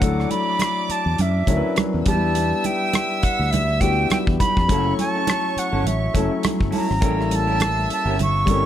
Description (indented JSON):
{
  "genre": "lush 1970s-style soul",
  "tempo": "103 BPM",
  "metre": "4/4",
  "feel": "swing 58% on 16ths",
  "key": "E dorian",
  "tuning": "A4 = 438 Hz",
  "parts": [
    { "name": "breathy silver concert flute", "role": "melody", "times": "0.0-8.7 s", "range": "E5 to C#6", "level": "-24 LUFS", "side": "right 2 dB", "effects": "none" },
    { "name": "warm studio violin section", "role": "second line", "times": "0.0-8.7 s", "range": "F#4 to E6", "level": "-30 LUFS", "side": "equal", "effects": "none" },
    { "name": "clear grand piano", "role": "accompaniment", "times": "0.0-8.7 s", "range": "F#3 to B4", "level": "-25 LUFS", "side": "left 5 dB", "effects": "none" },
    { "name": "fingered electric bass", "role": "bass", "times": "0.0-8.7 s", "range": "F#1 to F#2", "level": "-23 LUFS", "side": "equal", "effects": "none" },
    { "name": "damped 70s drum kit", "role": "drums", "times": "0.0-8.6 s", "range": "hi-hat, kick drum, rim click", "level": "-23 LUFS", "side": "equal", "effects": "none" },
    { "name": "congas", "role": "percussion", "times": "0.3-8.6 s", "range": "none", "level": "-27 LUFS", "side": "right 7 dB", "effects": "none" },
    { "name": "electric guitar through a small old amp", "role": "riff", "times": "4.7-8.6 s", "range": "C#4 to Bb4", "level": "-29 LUFS", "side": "right 4 dB", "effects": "none" }
  ],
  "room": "small room ambience",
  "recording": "none",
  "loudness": "-18 LUFS",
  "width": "side -11 dB against mid",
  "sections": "0.0-8.7 A section",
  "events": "none",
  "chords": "0.0 Dmaj9; 2.1 Em9; 4.7 F#m7; 7.0 A7b9",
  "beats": "| 0.02 0.60 1.19 1.77 | 2.35 2.94 3.52 4.11 | 4.69 5.27 5.85 6.43 | 7.02 7.60 8.18"
}